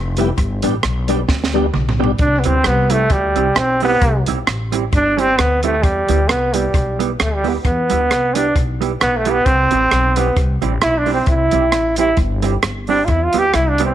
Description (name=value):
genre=ska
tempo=132 BPM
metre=4/4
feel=swing 56% on 8ths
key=C major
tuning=A4 = 441 Hz
part: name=upright bass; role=bass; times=0.0-13.9 s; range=F1 to E2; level=-20 LUFS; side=left 1 dB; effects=none
part: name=hollow-body jazz guitar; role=accompaniment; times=0.2-13.9 s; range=G3 to G4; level=-23 LUFS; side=right 10 dB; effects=tape echo
part: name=mellow tonewheel organ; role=stabs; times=0.2-2.1 s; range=G3 to G4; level=-22 LUFS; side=left 12 dB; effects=chorus vibrato, fast rotary speaker
part: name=compact cocktail drum kit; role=drums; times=0.2-13.9 s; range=hi-hat, kick drum, rim click, snare drum, toms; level=-20 LUFS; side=right 2 dB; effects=tape echo
part: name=bright trombone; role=melody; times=2.2-13.9 s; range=G3 to G4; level=-16 LUFS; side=right 1 dB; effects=none
room=light reverb, small room ambience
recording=1960s-style stereo with parts hard left and right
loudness=-14 LUFS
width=side -11 dB against mid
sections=0.0-2.2 A section; 2.2-13.9 B section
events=drum fill 1.3-2.2; trombone solo 2.2-13.9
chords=0.4 G; 2.2 C; 5.8 Em; 9.5 C; 13.1 Em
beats=| 0.38 0.84 1.29 1.75 | 2.20 2.65 3.11 3.56 | 4.02 4.47 4.92 5.38 | 5.83 6.29 6.74 7.19 | 7.64 8.10 8.55 9.00 | 9.46 9.91 10.36 10.82 | 11.27 11.72 12.18 12.63 | 13.08 13.54